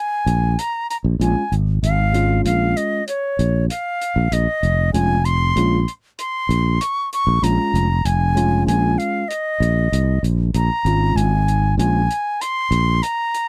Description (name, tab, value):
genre	progressive instrumental, band music in an uneven meter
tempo	96 BPM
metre	5/4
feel	straight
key	Bb minor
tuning	A4 = 440 Hz
part	bright reedy concert flute	melody	0.0-13.5 s	Db5 to Db6	-24 LUFS	equal	none
part	sustaining fretless electric bass	bass	0.3-13.0 s	F1 to C2	-20 LUFS	equal	none
part	hi-hat	drums	0.3-13.5 s	none	-35 LUFS	equal	none
part	barky tine electric piano	accompaniment	1.2-12.0 s	Ab3 to F4	-24 LUFS	equal	none
room	little or no reverb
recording	dry, close 1970s-style studio recording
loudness	-19 LUFS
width	mono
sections	0.0-13.5 A section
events	none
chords	0.0 Bbm7; 4.3 Absus4; 10.5 Bbm7